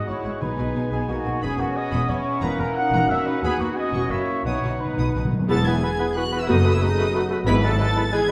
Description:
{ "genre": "classical, dramatic, fast romantic movement for symphony orchestra", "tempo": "179 BPM", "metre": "3/4", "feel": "straight", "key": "B major", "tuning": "A4 = 440 Hz", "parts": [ { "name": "bright oboe", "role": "second line", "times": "0.0-8.3 s", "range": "B4 to G#5", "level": "-37 LUFS", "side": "equal", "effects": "none" }, { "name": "dark clarinet", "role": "second line", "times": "0.0-8.3 s", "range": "B3 to F#4", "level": "-34 LUFS", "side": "equal", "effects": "none" }, { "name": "hollow concert flute", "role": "second line", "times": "0.0-8.3 s", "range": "F#5 to F#6", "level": "-38 LUFS", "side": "equal", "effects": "none" }, { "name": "rich chamber violin section", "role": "second line", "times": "0.0-8.2 s", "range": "A#3 to B5", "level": "-38 LUFS", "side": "equal", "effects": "none" }, { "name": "dark symphonic viola section", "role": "accompaniment", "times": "0.0-7.6 s", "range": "B3 to G#4", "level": "-32 LUFS", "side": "equal", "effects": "none" }, { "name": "mellow bassoon", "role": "accompaniment", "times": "0.0-8.3 s", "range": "G#3 to B3", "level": "-34 LUFS", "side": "equal", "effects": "none" }, { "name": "mellow French horn section", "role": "sustained chords", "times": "0.0-8.3 s", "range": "A#3 to B4", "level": "-33 LUFS", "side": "equal", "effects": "none" }, { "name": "dark trumpet section", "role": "stabs", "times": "0.0-8.2 s", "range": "D#4 to F#5", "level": "-30 LUFS", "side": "equal", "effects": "none" }, { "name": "rich symphonic violin section", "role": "melody", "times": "0.1-8.3 s", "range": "F#5 to B6", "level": "-36 LUFS", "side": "equal", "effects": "none" }, { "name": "rich symphonic cello section", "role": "bass", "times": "0.1-7.7 s", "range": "D#2 to B2", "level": "-31 LUFS", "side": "equal", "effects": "none" }, { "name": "rich symphonic double bass section", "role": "bass", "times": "0.1-7.7 s", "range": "E1 to D#2", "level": "-29 LUFS", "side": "equal", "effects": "none" }, { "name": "timpani", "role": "percussion", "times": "0.4-0.9, 4.5-5.5 s", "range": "B2", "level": "-31 LUFS", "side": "equal", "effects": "none" }, { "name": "warm trombone section", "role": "sustained chords", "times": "5.5-8.3 s", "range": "E3 to B3", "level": "-33 LUFS", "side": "equal", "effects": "none" } ], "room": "wet scoring stage reverb, RT60 1.9 s", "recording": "dark, warm production", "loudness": "-22 LUFS", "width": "mono", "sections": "0.0-5.5 A section; 5.5-8.3 B section", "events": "timpani fill 4.5-5.5", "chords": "0.4 G#m/B; 1.4 C#m7/E; 2.4 F#7/E; 3.4 B; 3.8 C#m7/B; 4.1 F#7; 4.5 B; 5.5 E; 6.5 B7/F#; 7.5 E/G#" }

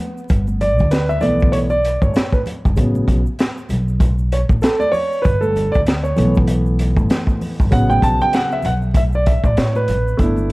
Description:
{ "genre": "hip hop, jazz-hop", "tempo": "97 BPM", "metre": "4/4", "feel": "swing 59% on 16ths", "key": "A mixolydian", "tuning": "A4 = 440 Hz", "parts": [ { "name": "egg shaker and congas", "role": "percussion", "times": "0.2-10.5 s", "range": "none", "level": "-30 LUFS", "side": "left 1 dB", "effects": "none" }, { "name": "upright bass", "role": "bass", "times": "0.3-10.5 s", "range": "G1 to A2", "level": "-18 LUFS", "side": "equal", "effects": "none" }, { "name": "crunchy breakbeat drum kit", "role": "drums", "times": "0.3-10.5 s", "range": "hi-hat, kick drum, snare drum", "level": "-18 LUFS", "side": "equal", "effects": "none" }, { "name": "dark grand piano", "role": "accompaniment", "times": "0.6-10.5 s", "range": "C#3 to A5", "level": "-18 LUFS", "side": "right 1 dB", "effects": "none" } ], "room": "light reverb, studio ambience", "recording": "dark, warm production, vinyl crackle", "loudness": "-14 LUFS", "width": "side -21 dB against mid", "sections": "0.3-10.2 A section", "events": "grand piano solo 0.3-10.2", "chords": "0.3 G69; 2.8 A69; 5.2 G69; 7.7 A69" }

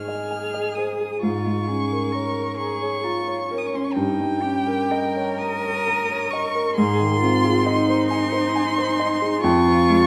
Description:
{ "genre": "classical, slow romantic movement for piano trio", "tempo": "44 BPM (dotted quarters)", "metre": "6/8", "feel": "rubato", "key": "Ab major", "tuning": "A4 = 440 Hz", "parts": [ { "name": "warm violin", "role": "melody", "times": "0.0-10.1 s", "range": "G5 to F6", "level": "-28 LUFS", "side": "equal", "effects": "none" }, { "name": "warm cello", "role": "second line", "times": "0.0-10.1 s", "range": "Db4 to Bb4", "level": "-27 LUFS", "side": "equal", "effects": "none" }, { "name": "dark grand piano", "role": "accompaniment", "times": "0.0-10.1 s", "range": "F2 to Bb5", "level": "-25 LUFS", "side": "equal", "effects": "none" } ], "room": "wet recital hall reverb, RT60 1.4 s", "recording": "none", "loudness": "-22 LUFS", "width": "mono", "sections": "0.0-10.1 A section", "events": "none", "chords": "0.0 Ab; 1.2 Bbm7/Ab; 3.9 Eb7/G; 6.8 Ab; 9.4 Db/F" }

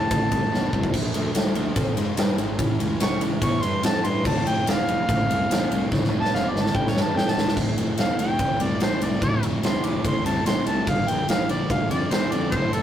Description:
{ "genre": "blues rock power trio and southern rock", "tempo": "145 BPM", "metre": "4/4", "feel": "straight", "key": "D minor", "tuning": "A4 = 441 Hz", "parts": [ { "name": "mellow harmonica", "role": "melody", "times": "0.0-12.8 s", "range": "A4 to D6", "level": "-26 LUFS", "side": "equal", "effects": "overdrive" }, { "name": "overdriven semi-hollow guitar", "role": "riff", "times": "0.0-12.8 s", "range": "D2 to G3", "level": "-28 LUFS", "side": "equal", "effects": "none" }, { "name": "fuzz fingered electric bass", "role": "bass", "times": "0.0-12.8 s", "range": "D1 to Ab2", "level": "-27 LUFS", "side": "equal", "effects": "overdrive" }, { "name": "big rock drum kit", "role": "drums", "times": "0.1-12.8 s", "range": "crash cymbal, kick drum, ride cymbal, snare drum", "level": "-24 LUFS", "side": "equal", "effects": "none" } ], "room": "moderate small room ambience, RT60 0.5 s", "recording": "rough rehearsal-room recording, warm saturation", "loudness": "-20 LUFS", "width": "side -10 dB against mid", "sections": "0.0-7.6 A section; 7.6-12.8 A section", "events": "harmonica solo 0.0-7.6, 7.6-12.8; drum fill 0.5-0.9, 5.9-7.6", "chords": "0.0 D5; 0.9 Bb7; 2.6 A7; 4.3 Dm; 6.7 A7; 7.6 Dm; 10.9 Gm" }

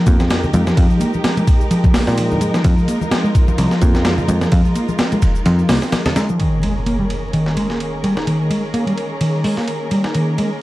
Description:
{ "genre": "breakbeat, breaks", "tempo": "128 BPM", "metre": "4/4", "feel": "swing 56% on 16ths", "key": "unclear", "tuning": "A4 = 440 Hz", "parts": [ { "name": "dark studio string section", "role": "sustained chords", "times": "0.0-10.6 s", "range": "Eb3 to Bb4", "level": "-23 LUFS", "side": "equal", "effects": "vintage 12-bit sampler grit, sidechain pumping" }, { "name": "picked electric bass", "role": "riff", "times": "0.0-10.5 s", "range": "Eb3 to Eb4", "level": "-18 LUFS", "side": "equal", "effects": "tube saturation, vintage 12-bit sampler grit, low-pass filter, tape echo" }, { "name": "picked electric bass", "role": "bass", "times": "0.1-5.8 s", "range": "C2 to Bb2", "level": "-18 LUFS", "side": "equal", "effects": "none" }, { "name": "breakbeat sampler-style drum kit", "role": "drums", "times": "0.1-10.5 s", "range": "hi-hat, kick drum, ride cymbal, snare drum", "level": "-17 LUFS", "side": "equal", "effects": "high-pass filter on cymbals, studio reverb, high-pass filter on kick, high-pass filter on snare, high-pass filter on hats" }, { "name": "shaker", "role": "drums", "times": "0.1-6.4 s", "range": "none", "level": "-40 LUFS", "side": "left 8 dB", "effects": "studio reverb" }, { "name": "congas", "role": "percussion", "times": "0.1-6.4 s", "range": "none", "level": "-24 LUFS", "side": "left 2 dB", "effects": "none" }, { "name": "impact", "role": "sound effects", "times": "6.4-8.3 s", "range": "none", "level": "-24 LUFS", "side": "equal", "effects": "none" } ], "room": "light reverb", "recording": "dark, warm production, vinyl crackle", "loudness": "-14 LUFS", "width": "side -17 dB against mid", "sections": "0.0-6.4 A section; 6.4-10.6 B section", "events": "kick drops out 5.5-6.4; impact 6.4-8.3", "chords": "0.0 Fm11; 6.4 Eb7sus4" }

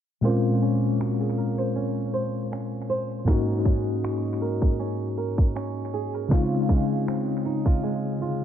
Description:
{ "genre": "contemporary R&B", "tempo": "79 BPM", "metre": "4/4", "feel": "swing 54% on 16ths", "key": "Bb minor", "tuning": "A4 = 442 Hz", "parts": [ { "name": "tine electric piano", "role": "accompaniment", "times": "0.2-8.4 s", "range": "Ab2 to Gb4", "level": "-25 LUFS", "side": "left 2 dB", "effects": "medium stereo tremolo, analog delay" }, { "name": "flamenco guitar", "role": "arpeggios", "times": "0.2-8.4 s", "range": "Db3 to C5", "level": "-30 LUFS", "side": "right 5 dB", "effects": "analog delay" }, { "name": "trap drum kit", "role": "drums", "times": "1.0-7.8 s", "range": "finger snaps, kick drum", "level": "-22 LUFS", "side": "equal", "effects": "none" } ], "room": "light reverb, digital ambience", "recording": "echo-heavy mix, low-pass filter", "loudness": "-23 LUFS", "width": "side -10 dB against mid", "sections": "0.2-8.4 A section", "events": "filter sweep 0.2-8.4", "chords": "0.2 Bbm9; 3.3 Ab9sus4; 6.3 Dbmaj7" }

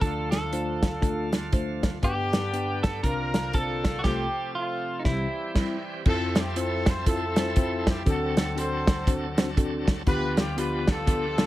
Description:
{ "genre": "uptempo gospel", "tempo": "119 BPM", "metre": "4/4", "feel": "swing 61% on 8ths", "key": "F major", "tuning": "A4 = 442 Hz", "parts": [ { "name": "clean electric guitar", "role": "melody", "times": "0.0-5.8 s", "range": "Eb4 to Bb4", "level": "-33 LUFS", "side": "right 3 dB", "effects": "tape echo" }, { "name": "warm horn section", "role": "melody", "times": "0.0-11.5 s", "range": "G3 to C5", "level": "-31 LUFS", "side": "left 1 dB", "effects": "none" }, { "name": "mellow tine electric piano", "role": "accompaniment", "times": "0.0-11.5 s", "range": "C2 to C5", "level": "-29 LUFS", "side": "left 1 dB", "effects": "fast stereo tremolo" }, { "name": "bright tonewheel organ", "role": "sustained chords", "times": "0.0-11.5 s", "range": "D2 to A4", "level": "-36 LUFS", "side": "right 3 dB", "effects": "slow rotary speaker, overdrive" }, { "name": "warm soul drum kit", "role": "drums", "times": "0.0-11.5 s", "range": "crash cymbal, hi-hat, kick drum, snare drum", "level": "-24 LUFS", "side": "equal", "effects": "none" } ], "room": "small room ambience", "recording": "none", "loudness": "-24 LUFS", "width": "side -15 dB against mid", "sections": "0.0-6.1 A section; 6.1-11.5 B section", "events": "band accent 4.0-6.1", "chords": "0.0 Dm; 2.0 G; 3.0 C9sus4; 4.0 F/C; 5.1 C; 6.1 Fmaj7; 8.1 D7; 10.1 G7/D" }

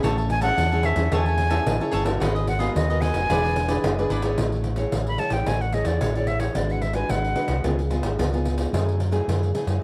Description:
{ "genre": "samba and choro", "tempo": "110 BPM", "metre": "4/4", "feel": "straight", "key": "A major from 4.4 s", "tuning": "A4 = 441 Hz", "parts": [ { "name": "cavaquinho", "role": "accompaniment", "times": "0.0-4.4 s", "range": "E4 to A5", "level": "-33 LUFS", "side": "equal", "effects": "none" }, { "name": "nylon-string guitar", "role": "accompaniment", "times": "0.0-9.8 s", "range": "G#2 to C#5", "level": "-30 LUFS", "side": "equal", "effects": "none" }, { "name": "fingered electric bass", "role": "bass", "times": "0.0-9.8 s", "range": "E1 to F#2", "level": "-27 LUFS", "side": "equal", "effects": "none" }, { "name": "pandeiro", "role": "percussion", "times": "0.0-9.8 s", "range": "none", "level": "-30 LUFS", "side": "equal", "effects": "none" }, { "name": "breathy bright concert flute", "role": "melody", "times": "0.3-7.6 s", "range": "C#5 to B5", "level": "-29 LUFS", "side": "equal", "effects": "none" } ], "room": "little or no reverb", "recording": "dry, close 1970s-style studio recording", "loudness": "-23 LUFS", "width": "mono", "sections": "0.0-4.4 A section; 4.4-9.8 B section", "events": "flute solo 4.4-9.8", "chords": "0.0 Amaj7; 2.2 G#m9; 3.3 E7; 4.4 Amaj7; 6.6 G#m7b5; 7.6 C#7; 8.7 F#m9" }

